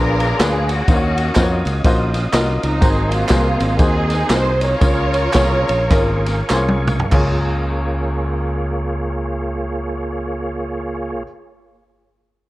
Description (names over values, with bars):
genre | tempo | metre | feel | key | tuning
uptempo gospel | 93-124 BPM | 4/4 | swing 61% on 8ths | Db major | A4 = 440 Hz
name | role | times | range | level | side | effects
warm studio string section | melody | 0.0-6.5 s | Gb3 to Db5 | -20 LUFS | right 1 dB | none
clear upright piano | accompaniment | 0.0-11.2 s | Db2 to F5 | -22 LUFS | left 2 dB | none
tonewheel organ | sustained chords | 0.0-11.2 s | Bb3 to Eb6 | -26 LUFS | right 1 dB | slow rotary speaker, overdrive, chorus vibrato
fingered electric bass | bass | 0.0-11.2 s | Ab1 to F2 | -21 LUFS | equal | none
swinging big-band drum kit | drums | 0.2-7.3 s | crash cymbal, kick drum, ride cymbal, snare drum, toms | -19 LUFS | equal | none
tambourine and handclaps | percussion | 0.2-7.5 s | none | -29 LUFS | right 2 dB | none
room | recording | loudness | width
light reverb, studio ambience | worn, warbling old tape, cassette tape, warbly pitch drift | -15 LUFS | side -18 dB against mid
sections
0.0-7.1 A section; 7.1-12.3 B section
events
slowing down 2.8-7.1; drum fill 6.5-7.1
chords
0.0 Bb7b9; 0.9 Ebm9; 2.8 Ab9; 4.8 Db6